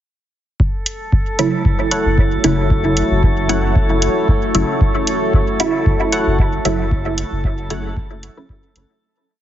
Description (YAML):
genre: dub techno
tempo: 114 BPM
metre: 4/4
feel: swing 55% on 16ths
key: F# minor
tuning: A4 = 440 Hz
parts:
  - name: deep dark ambient pad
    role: sustained chords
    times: 1.9-9.0 s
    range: A3 to C#5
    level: -22 LUFS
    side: equal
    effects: chorus, built-in reverb, sidechain pumping
  - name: electronic kick drum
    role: drums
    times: 0.6-8.6 s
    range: none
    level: -16 LUFS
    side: equal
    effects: none
  - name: drifting glass-harmonics texture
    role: texture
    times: 0.8-9.0 s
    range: A4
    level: -25 LUFS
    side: equal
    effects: chorus, built-in reverb, sidechain pumping
  - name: electronic hi-hat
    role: drums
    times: 0.9-8.9 s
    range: none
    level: -20 LUFS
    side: right 1 dB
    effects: none
  - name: filtered dub chord stab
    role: stabs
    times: 1.4-9.0 s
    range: C#3 to E4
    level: -21 LUFS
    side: right 1 dB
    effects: phaser, sidechain pumping, dub echo
  - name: pure sine sub bass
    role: bass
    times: 1.7-8.8 s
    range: F#1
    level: -21 LUFS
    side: equal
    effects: sidechain pumping
  - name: wavetable chord stab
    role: riff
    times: 1.9-7.8 s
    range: E4 to F#5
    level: -26 LUFS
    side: right 1 dB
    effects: vintage 12-bit sampler grit, sidechain pumping, dub echo
room: moderate lush hall reverb, RT60 2.1 s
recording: heavily compressed radio sound, multiband compression, nothing above 7.6 kHz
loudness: -14 LUFS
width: side -12 dB against mid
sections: 0.6-9.0 groove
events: fade-out 6.2-9.0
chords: 0.6 F#m7